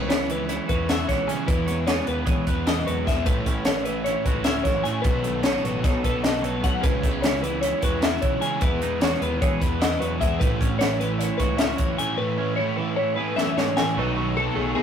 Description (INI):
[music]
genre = math rock and midwest emo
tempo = 303 BPM (eighths)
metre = 9/8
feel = straight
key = A lydian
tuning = A4 = 440 Hz
[part]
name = twelve-string electric guitar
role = accompaniment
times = 0.0-14.8 s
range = F#2 to B4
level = -30 LUFS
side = right 5 dB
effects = none
[part]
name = twelve-string electric guitar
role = arpeggios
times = 0.0-14.8 s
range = G#4 to G#5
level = -27 LUFS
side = left 2 dB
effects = none
[part]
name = crunchy overdriven guitar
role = riff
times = 0.0-14.8 s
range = A2 to A4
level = -28 LUFS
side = equal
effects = spring reverb
[part]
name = growling picked electric bass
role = bass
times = 0.0-14.8 s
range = F#1 to E3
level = -31 LUFS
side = equal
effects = overdrive
[part]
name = crisp fusion drum kit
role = drums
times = 0.1-13.9 s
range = hi-hat, kick drum, snare drum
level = -24 LUFS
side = equal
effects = none
[sound]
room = light reverb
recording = rough rehearsal-room recording, warm saturation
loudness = -21 LUFS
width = side -8 dB against mid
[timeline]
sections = 0.0-14.0 A section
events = drum fill 13.4-14.0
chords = 0.0 C#m7; 1.5 Emaj7; 3.3 A6; 5.1 B7; 6.8 C#m7; 8.6 Emaj7; 10.4 A6; 14.0 B7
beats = 0.10 0.30 0.50 0.70 0.90 1.09 1.29 | 1.49 1.69 1.89 2.08 2.28 2.48 2.68 2.88 3.08 | 3.27 3.47 3.67 3.87 4.07 4.27 4.46 4.66 4.86 | 5.06 5.26 5.46 5.65 5.85 6.05 6.25 6.45 6.64 | 6.84 7.04 7.24 7.44 7.63 7.83 8.03 8.23 8.43 | 8.62 8.82 9.02 9.22 9.42 9.62 9.81 10.01 10.21 | 10.41 10.61 10.80 11.00 11.20 11.40 11.60 11.79 11.99 | 12.19 12.39 12.59 12.78 12.98 13.18 13.38 13.58 13.77 | 13.97 14.17 14.37 14.56 14.76